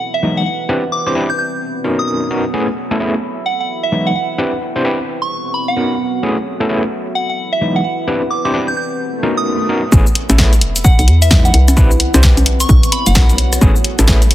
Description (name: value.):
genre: UK garage, two-step garage.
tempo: 130 BPM.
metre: 4/4.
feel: swing 62% on 16ths.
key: A major.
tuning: A4 = 440 Hz.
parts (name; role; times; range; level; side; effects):
deep dark ambient pad; texture; 0.0-14.3 s; B3 to B5; -24 LUFS; right 1 dB; chorus, built-in reverb, sidechain pumping.
soft synth bell; melody; 0.1-13.7 s; E5 to G6; -20 LUFS; right 1 dB; chorus, phaser, tape echo.
overdriven tine electric piano; stabs; 0.2-14.2 s; E3 to C5; -18 LUFS; equal; medium tremolo, tape echo.
swell; sound effects; 9.1-9.9 s; none; -23 LUFS; equal; none.
hollow knocking FM bass; bass; 9.9-14.3 s; E1 to E2; -12 LUFS; equal; none.
electronic kick drum; drums; 9.9-14.2 s; none; -12 LUFS; equal; none.
punchy analog drum machine; drums; 9.9-14.3 s; cabasa, congas, hi-hat, rim click, snare drum; -16 LUFS; left 1 dB; low-pass filter on perc, low-pass filter on hats, low-pass filter on snare, low-pass filter on room.
room: light reverb.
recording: dense, heavily limited modern master.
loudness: -12 LUFS.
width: side -14 dB against mid.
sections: 0.0-9.9 A section; 9.9-14.3 B section.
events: swell 9.1-9.9; drop 9.9-14.3.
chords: 0.0 Emaj9; 0.7 Cmaj9; 1.4 Bmaj9; 2.5 Amaj9; 3.2 Emaj9; 4.4 Cmaj9; 5.1 Bmaj9; 6.2 Amaj9; 6.9 Emaj9; 8.1 Cmaj9; 8.8 Bmaj9; 9.9 Amaj9; 10.6 Emaj9; 11.8 Cmaj9; 12.5 Bmaj9; 13.6 Amaj9.